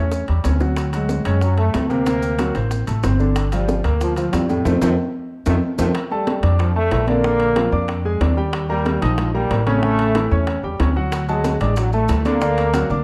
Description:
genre	latin, salsa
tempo	186 BPM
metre	4/4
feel	straight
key	Bb major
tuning	A4 = 440 Hz
part	clear trombone section	melody	0.0-13.0 s	Eb3 to Bb3	-25 LUFS	equal	none
part	clear concert grand piano	accompaniment	0.0-13.0 s	A2 to Eb6	-26 LUFS	equal	none
part	upright bass	bass	0.0-13.0 s	G1 to F#2	-22 LUFS	equal	none
part	bongos	percussion	0.1-13.0 s	none	-34 LUFS	equal	none
part	congas	percussion	0.1-13.0 s	none	-29 LUFS	equal	none
part	maracas	percussion	0.1-5.9, 11.1-13.0 s	none	-43 LUFS	equal	none
part	timbales	percussion	0.3-12.9 s	none	-32 LUFS	equal	none
room	moderate large studio reverb, RT60 1.2 s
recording	dark, warm production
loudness	-19 LUFS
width	mono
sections	0.0-5.9 A section; 5.9-13.0 A section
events	drum fill 0.0-0.8, 5.3-5.9; band accent 4.7-5.9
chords	0.0 A7; 0.8 Dmaj7; 2.1 D7b13; 3.4 Gm7; 4.7 F; 5.9 Bbmaj7; 7.2 Bb7; 8.5 Ebadd9; 9.8 A7; 11.1 D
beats	0.12 0.45 | 0.77 1.09 1.42 1.74 | 2.06 2.39 2.71 3.04 | 3.36 3.68 4.01 4.33 | 4.65 4.98 5.30 5.62 | 5.95 6.27 6.59 6.92 | 7.24 7.56 7.89 8.21 | 8.53 8.86 9.18 9.50 | 9.83 10.15 10.47 10.80 | 11.12 11.44 11.77 12.09 | 12.41 12.74

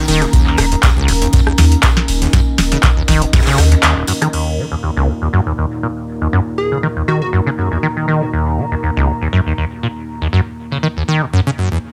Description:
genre	acid house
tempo	120 BPM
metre	4/4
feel	swing 54% on 16ths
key	unclear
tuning	A4 = 440 Hz
part	warbly tape-like pad	sustained chords	0.0-11.8 s	Eb2 to Eb4	-27 LUFS	equal	chorus, built-in reverb, sidechain pumping
part	liquid acid bass	riff	0.0-11.8 s	Eb1 to Eb3	-18 LUFS	equal	chorus, tube saturation
part	deep dark ambient pad	texture	0.0-11.8 s	Eb4 to Bb5	-29 LUFS	equal	chorus, built-in reverb, sidechain pumping
part	warm sub bass	bass	0.1-3.8 s	Eb1 to Eb2	-16 LUFS	equal	tube saturation, sidechain pumping
part	booming analog drum machine	drums	0.1-4.4 s	crash cymbal, handclaps, hi-hat, rim click, snare drum	-20 LUFS	equal	none
part	soft-mallet drum kit	drums	0.1-4.2 s	hi-hat, snare drum, tambourine	-29 LUFS	equal	sidechain pumping on hats, high-pass filter on hats, high-pass filter on snare, sidechain pumping on perc, high-pass filter on perc, high-pass filter on room
part	electronic kick drum	drums	0.3-3.4 s	none	-16 LUFS	equal	none
part	plucky unison lead	melody	6.6-7.3 s	Gb4 to Ab4	-26 LUFS	equal	dub echo
room	light reverb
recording	none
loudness	-15 LUFS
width	mono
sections	0.0-4.3 A section; 4.3-11.9 B section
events	drop 0.0-4.3; break 3.8-4.3; band accent 3.8; filter sweep on acid bass 4.3-11.9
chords	0.0 Eb5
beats	| 0.33 0.83 1.33 1.83 | 2.33 2.83 3.33 3.83 | 4.33 4.83 5.33 5.83 | 6.33 6.83 7.33 7.83 | 8.33 8.83 9.33 9.83 | 10.33 10.83 11.33 11.83

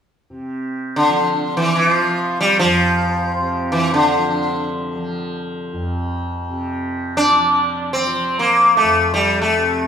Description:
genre	indian classical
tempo	free time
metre	none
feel	none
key	F raga bilaval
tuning	A4 = 440 Hz
part	tanpura	drone	0.3-9.9 s	F2 to F3	-25 LUFS	equal	none
part	sitar	melody	1.0-9.9 s	D3 to D4	-15 LUFS	equal	none
room	wet large studio reverb, RT60 0.9 s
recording	band playing live in one room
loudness	-15 LUFS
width	side -7 dB against mid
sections	0.3-9.9 A section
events	none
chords	none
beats	free time

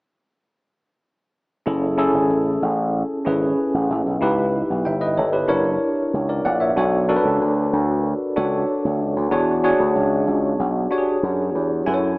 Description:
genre	polished 1980s jazz-funk pop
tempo	94 BPM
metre	4/4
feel	straight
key	F# minor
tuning	A4 = 440 Hz
part	tine electric piano	accompaniment	1.7-12.2 s	C#4 to G#5	-19 LUFS	equal	medium stereo tremolo, wide subtle chorus
part	slap bass with an envelope filter	bass	1.7-12.1 s	F#1 to F#2	-23 LUFS	equal	none
room	moderate lush hall reverb, RT60 2.6 s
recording	small speaker sound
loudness	-18 LUFS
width	side -26 dB against mid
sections	1.7-11.9 A section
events	none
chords	1.7 F#m9; 4.2 C#m7b5; 5.5 F#7b13; 6.8 Bm7; 9.3 E13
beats	| 1.66 2.30 2.94 3.58 | 4.22 4.86 5.49 6.13 | 6.77 7.41 8.05 8.68 | 9.32 9.96 10.60 11.24 | 11.88

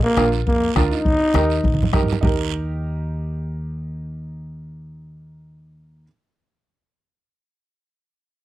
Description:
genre	latin, cumbia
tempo	204 BPM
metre	4/4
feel	straight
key	Eb major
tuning	A4 = 440 Hz
part	growling trombone	melody	0.0-1.9 s	Bb3 to Eb4	-20 LUFS	left 1 dB	slapback echo
part	clear upright piano	accompaniment	0.2-6.1 s	D4 to Bb4	-25 LUFS	right 6 dB	none
part	upright bass	bass	0.2-6.0 s	Bb1 to G2	-25 LUFS	equal	none
part	bombo	percussion	0.2-2.3 s	none	-22 LUFS	left 2 dB	none
part	congas	percussion	0.2-2.3 s	none	-23 LUFS	right 2 dB	none
part	guiro	percussion	0.2-2.3 s	none	-34 LUFS	right 15 dB	none
room	light reverb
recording	dry, close 1970s-style studio recording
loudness	-18 LUFS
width	side -15 dB against mid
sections	0.0-2.2 A section; 2.2-4.6 B section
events	drum fill 1.6-2.2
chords	0.0 Bb; 1.1 Eb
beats	0.17 0.46 0.76 | 1.05 1.35 1.64 1.94 | 2.23 2.52 2.82 3.11 | 3.41 3.70 4.00 4.29

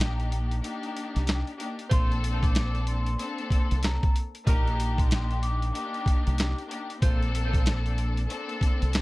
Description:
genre	hip hop, boom-bap hip-hop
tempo	94 BPM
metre	4/4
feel	swing 63% on 16ths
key	Bb major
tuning	A4 = 437 Hz
part	rich studio string section	accompaniment	0.0-9.0 s	Bb3 to A4	-33 LUFS	left 3 dB	cassette tape, high-pass filter, low-pass filter
part	deep dub fingered electric bass	bass	0.0-9.0 s	Bb1 to C2	-27 LUFS	equal	none
part	boom bap sampler-style drum kit	drums	0.0-9.0 s	hi-hat, kick drum, snare drum	-25 LUFS	equal	none
part	vibraphone with soft mallets	melody	1.9-6.5 s	Bb5 to D6	-36 LUFS	left 1 dB	high-pass filter, low-pass filter, digital delay
part	clear saxophone section	stabs	1.9-7.2 s	G3 to C5	-38 LUFS	right 1 dB	high-pass filter, low-pass filter, digital delay
room	little or no reverb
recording	none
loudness	-24 LUFS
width	side -21 dB against mid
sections	0.0-1.9 A section; 1.9-9.0 B section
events	break 0.6-1.9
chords	0.0 Ebmaj7/Bb; 1.9 Bbmaj9; 4.5 Ebmaj7/Bb; 7.0 Bbmaj9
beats	0.00 0.64 1.27 | 1.91 2.55 3.19 3.83 | 4.47 5.11 5.74 6.38 | 7.02 7.66 8.30 8.94

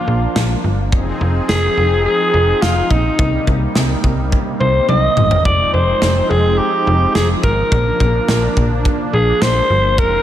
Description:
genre	synth-pop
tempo	106 BPM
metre	4/4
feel	straight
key	F dorian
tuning	A4 = 441 Hz
part	growling alto saxophone	melody	0.0-10.2 s	Eb4 to Eb5	-17 LUFS	equal	slapback echo, tape echo
part	brassy analog pad	sustained chords	0.0-10.2 s	C3 to Ab4	-22 LUFS	equal	chorus
part	slap-like FM bass	bass	0.1-10.2 s	F1 to C2	-17 LUFS	equal	none
part	modern studio drum kit	drums	0.4-10.1 s	kick drum, snare drum, toms	-19 LUFS	equal	none
room	moderate lush hall reverb, RT60 2.4 s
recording	big arena sound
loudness	-12 LUFS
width	side -11 dB against mid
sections	0.0-10.2 A section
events	drum fill 4.9-5.5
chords	0.0 Bb; 0.9 Fm7; 3.2 Cm7; 5.5 Fm7; 7.7 Bb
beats	0.36 | 0.93 1.49 2.06 2.62 | 3.19 3.76 4.32 4.89 | 5.45 6.02 6.59 7.15 | 7.72 8.28 8.85 9.42 | 9.98

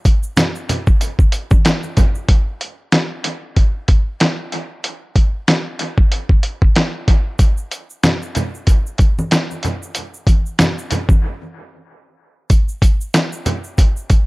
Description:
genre	hip hop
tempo	94 BPM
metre	4/4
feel	swing 57% on 16ths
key	none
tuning	none
part	dusty soul sampler-style drum kit	drums	0.1-14.3 s	hi-hat, kick drum, snare drum	-14 LUFS	equal	overdrive, dub echo
part	tube shaker and congas	percussion	0.1-2.3, 7.4-14.3 s	none	-25 LUFS	right 1 dB	dub echo
room	little or no reverb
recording	echo-heavy mix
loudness	-14 LUFS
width	side -23 dB against mid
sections	0.0-2.3 A section; 2.3-12.5 A section; 12.5-14.3 B section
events	break 11.2-12.5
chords	none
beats	0.37 1.01 1.65 | 2.29 2.93 3.56 4.20 | 4.84 5.48 6.12 6.76 | 7.39 8.03 8.67 9.31 | 9.95 10.59 11.22 11.86 | 12.50 13.14 13.78

